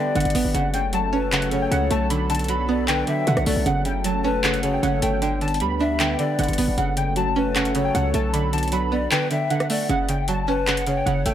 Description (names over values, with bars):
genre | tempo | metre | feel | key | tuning
hip hop, trap | 154 BPM | 4/4 | half-time | F# phrygian | A4 = 441 Hz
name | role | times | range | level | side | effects
warbly lo-fi synth keys | melody | 0.0-11.3 s | F#5 to B5 | -26 LUFS | left 1 dB | chorus, ping-pong delay
breathy bright large pan pipes | second line | 0.0-11.3 s | B4 to E5 | -28 LUFS | left 5 dB | ping-pong delay
string-like resonator pluck | accompaniment | 0.0-11.3 s | C#3 to D4 | -25 LUFS | right 4 dB | chorus
sweeping resonant pad | sustained chords | 0.0-9.9 s | F#3 to B4 | -29 LUFS | equal | chorus
hard-hitting 808-style bass | bass | 0.2-11.3 s | F#1 to B2 | -26 LUFS | equal | none
trap drum kit | drums | 0.2-11.3 s | handclaps, hi-hat, rim click | -26 LUFS | equal | none
room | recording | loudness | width
little or no reverb | none | -19 LUFS | side -10 dB against mid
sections
0.0-9.9 A section; 9.9-11.3 A section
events
kick muted 9.1-9.9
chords
0.0 G; 0.5 F#m; 2.1 Bm7; 3.7 F#m; 5.2 G; 6.8 F#m; 8.3 Bm7; 9.9 F#m